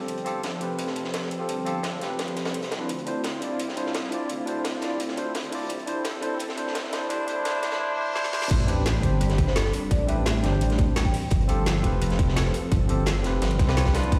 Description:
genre	liquid drum and bass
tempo	171 BPM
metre	4/4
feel	straight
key	unclear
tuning	A4 = 440 Hz
part	barky tine electric piano	accompaniment	0.0-14.2 s	C4 to D5	-32 LUFS	equal	delay
part	warm analog pad	sustained chords	0.0-14.2 s	F3 to B5	-35 LUFS	equal	chorus, sidechain pumping
part	dark detuned saw bass	bass	0.1-14.2 s	F1 to D2	-30 LUFS	equal	high-pass filter
part	crunchy breakbeat drum kit	drums	0.1-14.2 s	hi-hat, snare drum	-36 LUFS	equal	high-pass filter on hats, small room reverb, high-pass filter on snare, high-pass filter on room
part	garage drum kit	drums	0.1-14.2 s	crash cymbal, hi-hat, rim click, snare drum	-35 LUFS	equal	small room reverb
part	riser, reverse cymbal and sub drop	sound effects	6.5-9.9 s	none	-39 LUFS	equal	none
part	electronic kick drum	drums	8.5-14.2 s	none	-25 LUFS	equal	small room reverb
part	buzzing marimba with medium mallets	melody	9.5-11.2 s	A4 to G5	-36 LUFS	equal	vintage 12-bit sampler grit, delay
room	moderate recital hall reverb, RT60 1.4 s, small room ambience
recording	played on a big sound system in a bare room, stone room reverb, high-pass filter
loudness	-26 LUFS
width	mono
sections	0.0-8.5 A section; 8.5-14.2 B section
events	build-up 0.0-8.5; reverse cymbal 7.8-8.5; drum fill 8.2-8.5; drop 8.5-14.2; impact 8.5-9.9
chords	0.0 G9sus4; 2.9 Dm9; 5.7 C6; 8.5 Am11; 11.1 G9sus4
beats	| 0.09 0.44 0.79 1.14 | 1.49 1.84 2.19 2.54 | 2.89 3.24 3.59 3.94 | 4.30 4.65 5.00 5.35 | 5.70 6.05 6.40 6.75 | 7.10 7.45 7.80 8.15 | 8.51 8.86 9.21 9.56 | 9.91 10.26 10.61 10.96 | 11.31 11.66 12.02 12.37 | 12.72 13.07 13.42 13.77 | 14.12

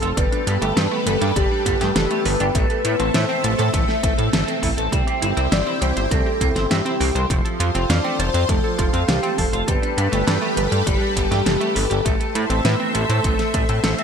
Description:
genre	synthwave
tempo	101 BPM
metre	4/4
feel	straight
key	A minor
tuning	A4 = 440 Hz
part	soft octave-layered synth lead	melody	0.0-14.0 s	G4 to E5	-25 LUFS	left 2 dB	chorus, phaser, digital delay
part	analog string pad	sustained chords	0.0-14.0 s	G3 to E5	-25 LUFS	equal	ensemble chorus, sidechain pumping
part	analog pluck	arpeggios	0.0-14.0 s	G3 to A5	-28 LUFS	right 4 dB	chorus, ping-pong delay
part	semi-hollow electric guitar	riff	0.0-14.0 s	F3 to C5	-29 LUFS	right 3 dB	lush chorus, ping-pong delay
part	chorused synth bass	bass	0.0-13.9 s	F1 to A2	-22 LUFS	equal	tube saturation, sidechain pumping
part	pop drum kit	drums	0.0-14.0 s	hi-hat, snare drum	-25 LUFS	equal	gated reverb
part	electronic kick drum	drums	0.2-13.7 s	none	-22 LUFS	equal	none
room	moderate plate reverb, RT60 2.3 s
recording	bright 1980s-style digital production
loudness	-17 LUFS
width	side -7 dB against mid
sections	0.0-14.0 A section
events	none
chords	0.2 Gadd9; 2.5 Am; 4.9 C; 7.3 F; 9.7 Gadd9; 12.1 Am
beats	| 0.17 0.77 1.36 1.96 | 2.55 3.14 3.74 4.33 | 4.93 5.52 6.12 6.71 | 7.30 7.90 8.49 9.09 | 9.68 10.27 10.87 11.46 | 12.05 12.65 13.24 13.84

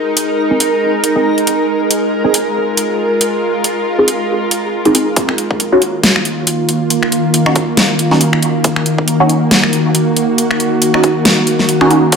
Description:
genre	deep dubstep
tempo	138 BPM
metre	4/4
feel	swing 57% on 16ths, half-time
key	Eb minor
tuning	A4 = 441 Hz
part	bowed-like drone	sustained chords	0.0-12.2 s	Eb3 to Bb4	-14 LUFS	equal	built-in reverb
part	backwards swelling texture	texture	0.0-5.2 s	Bb4	-21 LUFS	right 2 dB	built-in reverb
part	dubstep drum kit	drums	0.2-12.2 s	finger snaps, hi-hat, snare drum	-14 LUFS	equal	studio reverb
part	filtered dub chord stab	stabs	0.5-12.0 s	C4 to Ab4	-15 LUFS	right 1 dB	phaser, analog chorus, dub echo
part	electronic kick drum	drums	5.2-12.2 s	none	-18 LUFS	equal	high-pass filter on kick, studio reverb
room	wet echo chamber reverb, RT60 1.3 s, digital ambience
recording	none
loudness	-11 LUFS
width	side -6 dB against mid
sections	0.0-5.2 A section; 5.2-12.2 B section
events	build-up 5.2-12.2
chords	0.0 Ab5; 5.2 Ebm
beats	0.39 0.82 1.25 | 1.69 2.12 2.56 2.99 | 3.43 3.86 4.30 4.73 | 5.17 5.60 6.04 6.47 | 6.91 7.34 7.78 8.21 | 8.65 9.08 9.52 9.95 | 10.38 10.82 11.25 11.69 | 12.12

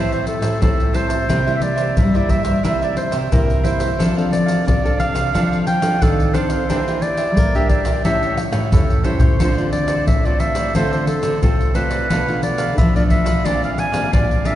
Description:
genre	samba and choro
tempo	89 BPM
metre	4/4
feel	straight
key	A minor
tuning	A4 = 441 Hz
part	warm clarinet	melody	0.0-14.6 s	A4 to Ab5	-22 LUFS	right 1 dB	none
part	cavaquinho	accompaniment	0.0-14.6 s	D4 to A5	-26 LUFS	right 4 dB	none
part	nylon-string guitar	accompaniment	0.0-14.6 s	G2 to A4	-25 LUFS	left 1 dB	none
part	nylon-string guitar	bass	0.0-14.6 s	A2 to Bb3	-23 LUFS	left 1 dB	none
part	tube shaker, pandeiro, surdo and tamborim	percussion	0.1-14.6 s	none	-19 LUFS	equal	none
room	wet concert hall reverb, RT60 2.1 s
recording	recorded in a church or concert hall, nothing above 10.5 kHz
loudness	-15 LUFS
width	side -12 dB against mid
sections	0.0-14.6 A section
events	drum fill 8.4-9.4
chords	0.0 Am7; 1.3 C7; 4.0 F6; 6.7 Em7b5; 8.0 A7; 9.4 Dm7; 12.1 Bm7b5; 13.5 Bb9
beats	0.62 | 1.29 1.97 2.64 3.32 | 3.99 4.67 5.34 6.02 | 6.69 7.37 8.04 8.72 | 9.40 10.07 10.75 11.42 | 12.10 12.78 13.45 14.13

